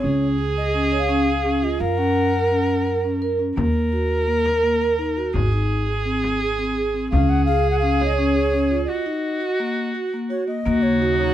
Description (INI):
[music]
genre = contemporary instrumental, chamber music in an uneven meter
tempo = 169 BPM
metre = 5/4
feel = straight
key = Eb dorian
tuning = A4 = 441 Hz
[part]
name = bright reedy bass bansuri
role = melody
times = 0.0-3.0, 7.1-11.3 s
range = Db5 to Gb5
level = -26 LUFS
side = left 4 dB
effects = none
[part]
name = warm viola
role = second line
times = 0.0-11.3 s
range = Gb4 to Bb4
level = -24 LUFS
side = equal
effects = none
[part]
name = vibraphone with soft mallets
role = arpeggios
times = 0.0-11.3 s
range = Bb3 to Db5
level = -22 LUFS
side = right 1 dB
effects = none
[part]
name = upright bass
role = bass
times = 0.0-11.3 s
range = Ab1 to Gb2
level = -24 LUFS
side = equal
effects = none
[part]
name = frame drum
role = percussion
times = 3.6-8.5 s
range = none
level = -29 LUFS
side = left 3 dB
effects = none
[part]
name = ethereal airy pad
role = sustained chords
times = 10.8-11.3 s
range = Db3 to Eb4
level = -27 LUFS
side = right 6 dB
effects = ensemble chorus, built-in reverb
[sound]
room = little or no reverb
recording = dark, warm production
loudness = -18 LUFS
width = side -12 dB against mid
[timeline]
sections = 0.0-10.7 A section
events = break 8.9-10.7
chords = 0.0 Db; 1.8 Gb; 3.6 Ebm; 5.3 Ab; 7.1 Db; 8.9 Ebm; 10.7 Ebm7